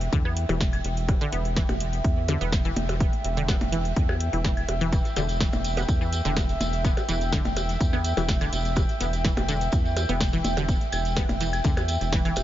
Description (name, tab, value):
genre	minimal techno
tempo	125 BPM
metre	4/4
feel	straight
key	E minor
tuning	A4 = 440 Hz
part	rubbery square bass	bass	0.0-12.4 s	E1 to E2	-28 LUFS	equal	sidechain pumping
part	booming analog drum machine	drums	0.0-12.4 s	hi-hat, snare drum	-34 LUFS	equal	overdrive
part	warbly tape-like pad	texture	0.0-12.4 s	E5 to G5	-32 LUFS	equal	chorus, built-in reverb, sidechain pumping
part	resonant blip pluck	riff	0.1-12.3 s	D3 to B3	-32 LUFS	equal	chorus, sidechain pumping, analog delay
part	electronic kick drum	drums	0.1-12.2 s	none	-25 LUFS	equal	none
part	claves and percussion blips	percussion	0.3-12.4 s	none	-34 LUFS	right 1 dB	tape echo
part	tambourine	percussion	4.9-12.4 s	none	-37 LUFS	right 3 dB	none
room	light reverb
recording	nothing above 7.5 kHz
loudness	-22 LUFS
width	side -13 dB against mid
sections	0.0-12.4 A section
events	none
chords	0.0 Em